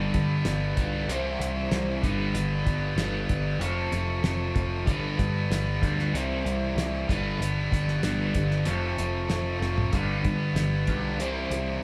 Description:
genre	classic rock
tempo	95 BPM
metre	4/4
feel	straight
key	G mixolydian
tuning	A4 = 445 Hz
part	overdriven semi-hollow guitar	riff	0.0-11.8 s	F2 to C4	-32 LUFS	equal	phaser
part	tight distorted guitar	riff	0.0-11.8 s	C3 to C5	-32 LUFS	equal	distortion
part	overdriven picked electric bass	bass	0.0-11.8 s	F1 to G2	-35 LUFS	equal	none
part	cloth-damped thuddy drum kit	drums	0.1-11.7 s	hi-hat, kick drum, snare drum, toms	-32 LUFS	equal	none
room	moderate large studio reverb, RT60 1.3 s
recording	band playing live in one room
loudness	-27 LUFS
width	mono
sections	0.0-11.8 A section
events	drum fill 9.6-9.9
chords	0.0 G; 1.1 C; 2.0 G; 3.6 F; 4.9 G; 6.1 C; 7.1 G; 8.7 F; 9.9 G; 11.2 C

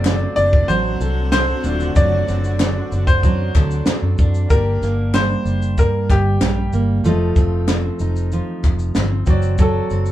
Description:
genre	acoustic pop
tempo	94 BPM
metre	4/4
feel	straight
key	G harmonic minor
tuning	A4 = 440 Hz
part	clear upright piano	melody	0.0-10.1 s	G4 to D5	-21 LUFS	left 1 dB	none
part	bright grand piano	accompaniment	0.0-10.1 s	A3 to Eb5	-32 LUFS	left 3 dB	none
part	fingerpicked steel-string acoustic guitar	accompaniment	0.0-10.1 s	G2 to A4	-23 LUFS	right 2 dB	none
part	granular cloud pad	sustained chords	0.0-4.5 s	D3 to F#4	-32 LUFS	left 2 dB	built-in reverb
part	vintage muted fingered electric bass	bass	0.0-10.1 s	Eb1 to F#2	-20 LUFS	equal	none
part	group handclap	percussion	0.0-9.1 s	none	-32 LUFS	left 6 dB	none
part	compact cocktail drum kit	drums	0.1-10.1 s	kick drum, shaker, snare drum	-17 LUFS	equal	none
room	moderate studio ambience, RT60 0.5 s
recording	band playing live in one room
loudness	-15 LUFS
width	side -13 dB against mid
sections	0.0-4.5 A section; 4.5-10.1 B section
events	none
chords	0.0 D7; 4.5 Gm; 7.0 F7; 9.3 D7

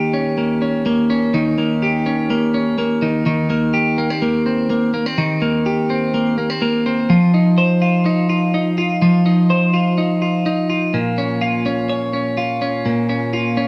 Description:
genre	indie pop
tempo	125 BPM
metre	4/4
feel	straight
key	unclear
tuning	A4 = 444 Hz
part	twelve-string electric guitar	solo	0.0-13.7 s	Bb2 to Db5	-18 LUFS	equal	none
room	moderate stone room reverb, RT60 1.1 s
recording	band playing live in one room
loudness	-18 LUFS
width	mono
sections	0.0-10.9 A section; 10.9-13.7 B section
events	none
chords	0.0 Eb7; 3.0 Cm7/Eb; 7.1 F5; 10.9 Bbm

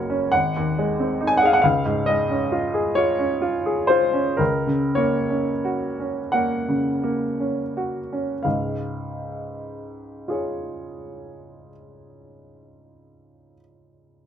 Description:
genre	classical, romantic nocturne for solo piano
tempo	27-46 BPM (dotted quarters)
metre	6/8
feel	rubato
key	Db major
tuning	A4 = 442 Hz
part	clear baby grand piano	solo	0.0-14.3 s	Gb1 to Ab5	-20 LUFS	equal	none
room	moderate large studio reverb, RT60 0.8 s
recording	none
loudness	-20 LUFS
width	side -9 dB against mid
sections	0.0-8.4 A section; 8.4-12.1 B section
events	slowing down 0.3-8.4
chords	0.3 Ab7; 1.6 Db; 4.4 Gb/Db; 8.4 Db

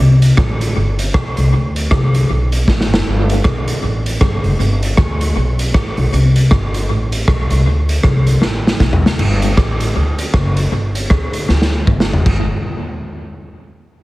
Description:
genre	ska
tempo	156 BPM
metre	4/4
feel	swing 60% on 8ths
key	G major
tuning	A4 = 440 Hz
part	upright bass	bass	0.0-12.5 s	F#1 to D2	-15 LUFS	equal	none
part	raw garage drum kit	drums	0.2-12.4 s	crash cymbal, hi-hat, kick drum, rim click, snare drum, toms	-16 LUFS	equal	tape echo
room	light reverb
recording	heavily compressed radio sound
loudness	-12 LUFS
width	side -19 dB against mid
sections	0.0-9.2 A section; 9.2-12.3 B section; 12.3-13.8 C section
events	drum fill 2.7-3.1, 8.4-9.2, 11.5-12.3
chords	none

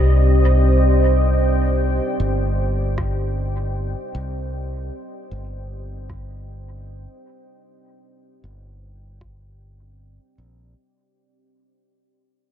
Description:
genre	ambient dub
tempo	77 BPM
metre	4/4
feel	swing 58% on 16ths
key	C minor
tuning	A4 = 438 Hz
part	deep dark ambient pad	sustained chords	0.0-10.8 s	C4 to G5	-23 LUFS	equal	chorus, built-in reverb
part	modern bright fingered electric bass	bass	0.0-10.7 s	G1 to C2	-19 LUFS	equal	none
part	electronic kick drum	drums	3.0-9.4 s	none	-29 LUFS	equal	none
part	electronic rim click	drums	3.0-9.4 s	none	-37 LUFS	equal	low-pass filter on perc, low-pass filter on snare, dub echo
room	light reverb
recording	none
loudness	-17 LUFS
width	side -9 dB against mid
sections	0.0-10.8 A section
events	fade-out 0.0-10.8; filter sweep on drum 0.0-10.8; filter sweep on fingered electric bass 0.0-10.8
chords	0.0 Cmadd9

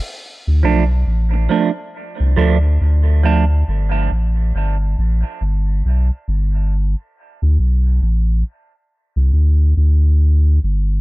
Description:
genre	reggae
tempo	69 BPM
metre	4/4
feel	swing 62% on 16ths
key	D dorian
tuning	A4 = 444 Hz
part	warm sub bass	bass	0.5-11.0 s	G1 to D2	-14 LUFS	equal	none
part	semi-hollow electric guitar	accompaniment	0.6-3.4 s	F3 to D4	-20 LUFS	right 6 dB	phaser, dub echo
room	small room ambience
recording	dark, warm production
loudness	-14 LUFS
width	side -20 dB against mid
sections	0.2-11.0 A section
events	break 0.0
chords	0.2 Dm; 3.7 N.C.; 7.1 D5

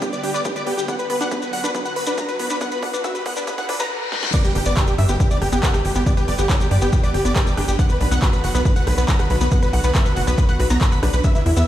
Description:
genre	uplifting trance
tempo	139 BPM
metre	4/4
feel	straight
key	B minor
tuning	A4 = 440 Hz
part	big supersaw lead	melody	0.0-11.6 s	E4 to B5	-24 LUFS	equal	sidechain pumping, low-pass filter, ping-pong delay
part	supersaw pad	sustained chords	0.0-11.7 s	B2 to B4	-31 LUFS	right 2 dB	sidechain pumping
part	wide unison pluck	arpeggios	0.0-11.6 s	B3 to B5	-27 LUFS	left 1 dB	sidechain pumping, ping-pong delay
part	big-room dance drum kit	drums	0.0-11.7 s	crash cymbal, handclaps, hi-hat, rim click, snare drum	-28 LUFS	right 1 dB	sidechain pumping on hats, sidechain pumping on cymbals
part	electronic kick drum	drums	0.0-11.3 s	none	-19 LUFS	equal	high-pass filter on kick, high-pass filter on room
part	maracas	percussion	0.0-11.7 s	none	-33 LUFS	left 4 dB	none
part	riser, reverse cymbal and impact	sound effects	0.6-6.1 s	none	-32 LUFS	left 1 dB	none
part	tight sequencer bass	bass	4.6-11.6 s	F#1 to G2	-19 LUFS	equal	sidechain pumping
room	light reverb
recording	played on a big sound system in a bare room, stone room reverb, high-pass filter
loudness	-17 LUFS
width	side -12 dB against mid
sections	0.0-4.3 A section; 4.3-11.7 B section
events	build-up 0.0-4.3; filter sweep 0.0-4.3; riser 0.6-4.3; drum fill 0.9-3.9, 4.1; reverse cymbal 3.5-4.3; drop 4.3-11.7; impact 4.3-6.1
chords	0.0 G; 0.9 Bm; 4.3 G; 7.8 Bm

